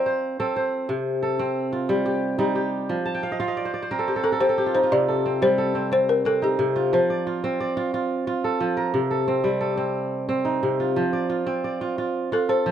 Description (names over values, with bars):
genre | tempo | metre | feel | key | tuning
west african traditional | 119 BPM (dotted quarters) | 12/8 | straight | C dorian | A4 = 445 Hz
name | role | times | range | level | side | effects
balafon | melody | 0.0-0.5, 4.2-7.9, 12.3-12.7 s | G4 to D5 | -22 LUFS | left 1 dB | none
kora | arpeggios | 0.0-12.7 s | C3 to A5 | -22 LUFS | right 1 dB | none
room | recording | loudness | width
little or no reverb | dry, close 1970s-style studio recording | -21 LUFS | side -9 dB against mid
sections
0.0-4.9 A section; 4.9-12.7 B section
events
kora fill 3.1-4.9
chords
0.0 F; 0.9 Cm; 2.9 F5; 4.9 Cm; 6.9 F; 8.9 Cm; 11.0 F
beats
0.39 | 0.89 1.39 1.89 2.40 | 2.90 3.40 3.91 4.41 | 4.91 5.42 5.92 6.42 | 6.93 7.43 7.93 8.44 | 8.94 9.45 9.95 10.46 | 10.96 11.47 11.97 12.48